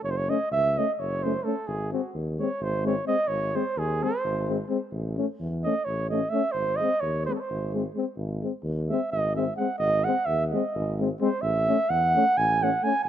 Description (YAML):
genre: balkan folk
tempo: 258 BPM (eighths)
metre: 7/8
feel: straight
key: G# phrygian dominant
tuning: A4 = 440 Hz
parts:
  - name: mellow flugelhorn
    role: second line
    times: 0.0-13.1 s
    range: F#4 to G#5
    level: -26 LUFS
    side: right 2 dB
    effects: none
  - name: mellow tuba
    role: bass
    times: 0.0-13.1 s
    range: F#1 to E2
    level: -30 LUFS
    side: equal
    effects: none
  - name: dark euphonium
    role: accompaniment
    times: 0.3-12.9 s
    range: G#3 to A3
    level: -32 LUFS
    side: right 2 dB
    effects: none
  - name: mellow trombone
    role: accompaniment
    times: 0.3-12.9 s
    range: B#3 to C#4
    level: -31 LUFS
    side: left 9 dB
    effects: none
room: light reverb, small room ambience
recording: rough home demo mix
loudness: -24 LUFS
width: side -10 dB against mid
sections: 0.0-13.1 A section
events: flugelhorn solo 0.0-13.1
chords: 0.0 F#m; 1.7 G#; 4.9 A; 6.5 G#; 11.4 A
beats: | 0.04 0.27 0.50 0.74 0.97 1.20 1.43 | 1.67 1.90 2.13 2.36 2.59 2.83 3.06 | 3.29 3.52 3.76 3.99 4.22 4.45 4.68 | 4.92 5.15 5.38 5.61 5.85 6.08 6.31 | 6.54 6.78 7.01 7.24 7.47 7.70 7.94 | 8.17 8.40 8.63 8.87 9.10 9.33 9.56 | 9.79 10.03 10.26 10.49 10.72 10.96 11.19 | 11.42 11.65 11.88 12.12 12.35 12.58 12.81 | 13.04